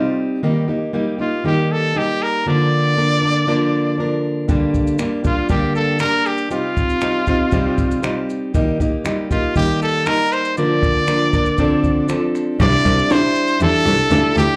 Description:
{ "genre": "acoustic pop", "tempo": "118 BPM", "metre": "4/4", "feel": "straight", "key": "unclear", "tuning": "A4 = 440 Hz", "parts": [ { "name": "brilliant trumpet", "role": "melody", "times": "0.0-14.6 s", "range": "F4 to D5", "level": "-22 LUFS", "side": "equal", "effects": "plate reverb, slapback echo" }, { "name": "fingerpicked plugged-in steel-string acoustic guitar", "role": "accompaniment", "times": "0.0-14.6 s", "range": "G2 to Bb4", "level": "-21 LUFS", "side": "equal", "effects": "plate reverb, slapback echo" }, { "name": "compact cocktail drum kit", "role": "drums", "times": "4.5-14.5 s", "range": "crash cymbal, finger snaps, kick drum, shaker, snare drum", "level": "-24 LUFS", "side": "equal", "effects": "none" }, { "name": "rich cello", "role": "bass", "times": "12.6-14.4 s", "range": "C2 to E2", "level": "-21 LUFS", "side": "equal", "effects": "none" } ], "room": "moderate club reverb, RT60 0.6 s", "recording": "live gig heard through the venue's PA, club ambience", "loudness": "-18 LUFS", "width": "mono", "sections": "0.0-12.6 A section; 12.6-14.6 B section", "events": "none", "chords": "0.4 Eb; 2.5 Bb/D; 4.5 Gm; 6.5 Cm; 8.5 Eb; 10.6 Bb/D; 11.6 Dm7; 12.6 Cadd9" }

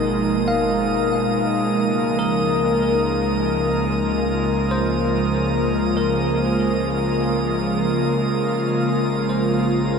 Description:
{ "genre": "ambient", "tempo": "72 BPM", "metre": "4/4", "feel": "straight", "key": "unclear", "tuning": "A4 = 439 Hz", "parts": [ { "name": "airy breathy pad", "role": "sustained chords", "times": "0.0-10.0 s", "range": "Cb3 to Bb4", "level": "-19 LUFS", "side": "equal", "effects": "chorus" }, { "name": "bell-like tine electric piano", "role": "arpeggios", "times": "0.0-10.0 s", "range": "Bb4 to F5", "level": "-28 LUFS", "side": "left 1 dB", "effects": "medium stereo tremolo, ping-pong delay" }, { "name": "warm sub bass", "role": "bass", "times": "0.0-10.0 s", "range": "Ab1 to Db2", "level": "-34 LUFS", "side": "equal", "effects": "none" }, { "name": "organ-like drone", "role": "drone", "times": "0.0-10.0 s", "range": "F3", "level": "-29 LUFS", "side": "right 1 dB", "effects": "ensemble chorus, built-in reverb" }, { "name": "drifting glass-harmonics texture", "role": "texture", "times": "0.0-10.0 s", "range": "Eb6", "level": "-30 LUFS", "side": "right 3 dB", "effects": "chorus, built-in reverb" } ], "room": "wet huge ambient reverb, RT60 8.1 s", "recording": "none", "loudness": "-18 LUFS", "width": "side -6 dB against mid", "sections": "0.0-10.0 A section", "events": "fade-in on synth texture 0.0-10.0; fade-out on tine electric piano 0.0-10.0; fade-out on sub bass 0.0-10.0", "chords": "0.0 Abmadd9; 1.8 Db6; 8.5 Bbm7" }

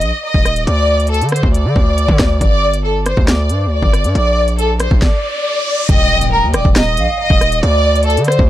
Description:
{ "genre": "hip hop, drill", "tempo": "138 BPM", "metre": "4/4", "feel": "half-time", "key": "unclear", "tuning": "A4 = 440 Hz", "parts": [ { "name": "warm studio violin section", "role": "melody", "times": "0.0-8.5 s", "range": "A4 to Eb5", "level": "-16 LUFS", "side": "equal", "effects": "analog delay" }, { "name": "distorted 808-style bass", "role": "bass", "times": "0.0-8.5 s", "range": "Eb1 to D3", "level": "-15 LUFS", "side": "equal", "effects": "distortion, transformer saturation" }, { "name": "drill drum kit", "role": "drums", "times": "0.0-8.5 s", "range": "hi-hat, kick drum, rim click, snare drum", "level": "-14 LUFS", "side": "equal", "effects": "none" }, { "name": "riser and impact", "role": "sound effects", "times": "5.1-7.6 s", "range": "none", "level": "-23 LUFS", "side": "equal", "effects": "none" }, { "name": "mellow hollow polished pan flute", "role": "second line", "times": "5.9-8.5 s", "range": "D5 to G5", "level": "-22 LUFS", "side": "right 2 dB", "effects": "analog delay" } ], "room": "little or no reverb", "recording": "dry, gritty hardware recording, transformer saturation", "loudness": "-11 LUFS", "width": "side -13 dB against mid", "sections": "0.0-5.9 A section; 5.9-8.5 B section", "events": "riser 5.1-5.9; stop 5.0-5.9; impact 5.9-7.6", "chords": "0.0 Eb5; 0.7 D5; 2.4 G5; 4.2 Bb; 5.9 Eb; 7.6 D5" }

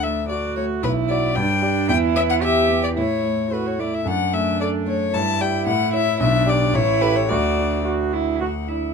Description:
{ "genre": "quick classical-period movement for piano trio", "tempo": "111 BPM", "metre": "2/4", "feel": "straight", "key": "D major", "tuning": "A4 = 440 Hz", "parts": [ { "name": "rich violin", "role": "melody", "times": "0.0-8.9 s", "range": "B4 to A5", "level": "-22 LUFS", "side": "left 6 dB", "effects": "none" }, { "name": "rich cello", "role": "second line", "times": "0.0-8.9 s", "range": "D4 to G4", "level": "-24 LUFS", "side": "right 10 dB", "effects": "none" }, { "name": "dark concert grand piano", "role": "accompaniment", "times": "0.0-8.9 s", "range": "A1 to D5", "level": "-22 LUFS", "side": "equal", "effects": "none" } ], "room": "moderate studio ambience, RT60 0.5 s", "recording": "dark, warm production", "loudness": "-18 LUFS", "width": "side -6 dB against mid", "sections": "0.0-8.4 A section", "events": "none", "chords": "0.0 D; 0.8 Bm; 1.4 G5; 1.9 Em; 3.0 A; 4.1 D/F#; 5.1 G5; 5.7 A; 6.2 G/B; 6.7 A7; 7.3 D" }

